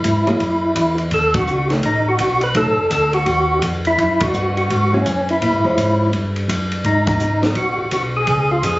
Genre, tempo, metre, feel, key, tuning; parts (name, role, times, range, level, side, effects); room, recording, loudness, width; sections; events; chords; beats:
soul jazz organ trio; 168 BPM; 4/4; swing 64% on 8ths; A4 = 440 Hz
percussive tonewheel organ; melody; 0.0-8.8 s; C#4 to B4; -17 LUFS; equal; slow rotary speaker, overdrive, chorus vibrato
mellow tonewheel organ; bass; 0.0-8.8 s; Gb1 to A#2; -21 LUFS; equal; slow rotary speaker
compact cocktail drum kit; drums; 0.0-8.7 s; hi-hat, kick drum, ride cymbal, snare drum; -24 LUFS; equal
archtop guitar, miked and amplified; accompaniment; 0.3-2.8, 4.9-7.6 s; D#3 to G#4; -21 LUFS; equal
moderate studio reverb, RT60 0.7 s; recorded on a phone in the room, club reverb, nothing above 7.8 kHz; -15 LUFS; side -19 dB against mid
0.0-8.8 A section
band accent 1.3, 4.2, 7.0
0.0 F#7sus2; 1.1 B9; 2.6 Cdim7; 4.0 F#7sus2; 5.4 A#m7; 6.1 N.C.; 6.8 G#m7; 8.3 C#
0.04 0.40 0.76 | 1.12 1.48 1.84 2.20 | 2.55 2.91 3.27 3.63 | 3.99 4.34 4.70 5.06 | 5.42 5.78 6.13 6.49 | 6.85 7.21 7.57 7.92 | 8.28 8.64